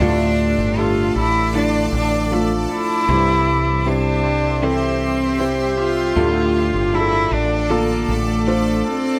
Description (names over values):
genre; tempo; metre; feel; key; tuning
pop ballad; 78 BPM; 4/4; straight; D minor; A4 = 444 Hz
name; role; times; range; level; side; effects
warm cello; melody; 0.0-9.2 s; A3 to F4; -22 LUFS; equal; none
felt-muted upright piano; accompaniment; 0.0-9.2 s; G2 to E5; -24 LUFS; equal; none
granular cloud pad; sustained chords; 0.0-9.2 s; G4 to D6; -29 LUFS; equal; built-in reverb
direct-recorded clean electric guitar; arpeggios; 0.0-9.2 s; C3 to C5; -31 LUFS; equal; warbly pitch drift
mellow fretless electric bass; bass; 0.0-8.8 s; G1 to D2; -25 LUFS; equal; none
room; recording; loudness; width
moderate studio reverb, RT60 0.8 s; band playing live in one room; -18 LUFS; mono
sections
0.0-9.2 A section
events
none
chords
0.0 Dm; 3.1 C; 6.2 Dm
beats
| 0.01 0.78 1.55 2.32 | 3.09 3.86 4.62 5.39 | 6.16 6.93 7.70 8.47